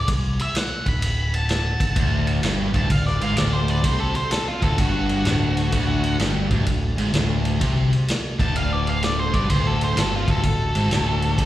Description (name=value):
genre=blues rock power trio and southern rock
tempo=127 BPM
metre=4/4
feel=swing 66% on 8ths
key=D mixolydian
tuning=A4 = 440 Hz
part: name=octave-fuzz lead guitar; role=melody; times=0.0-11.5 s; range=F4 to B5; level=-26 LUFS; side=equal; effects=distortion, slapback echo, plate reverb
part: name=growling picked electric bass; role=bass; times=0.0-11.5 s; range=D1 to C2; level=-23 LUFS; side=equal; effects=overdrive
part: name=vintage drum kit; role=drums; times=0.1-11.5 s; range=kick drum, ride cymbal, snare drum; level=-25 LUFS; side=equal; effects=none
part: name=bluesy overdriven lead guitar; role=second line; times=1.4-11.5 s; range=C4 to F#5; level=-32 LUFS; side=right 1 dB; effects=distortion, plate reverb
part: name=tonewheel organ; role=sustained chords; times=1.9-11.5 s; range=A3 to D5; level=-38 LUFS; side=right 4 dB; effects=none
part: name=cranked stack guitar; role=riff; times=2.0-11.5 s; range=D2 to C3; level=-23 LUFS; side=equal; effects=overdrive, slapback echo
room=light reverb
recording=live gig heard through the venue's PA, recital hall reverb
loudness=-19 LUFS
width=side -14 dB against mid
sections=0.0-11.5 A section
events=none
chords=0.0 D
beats=| 0.07 0.55 1.02 1.49 | 1.96 2.43 2.90 3.37 | 3.84 4.31 4.78 5.25 | 5.73 6.20 6.67 7.14 | 7.61 8.08 8.55 9.03 | 9.50 9.97 10.44 10.91 | 11.38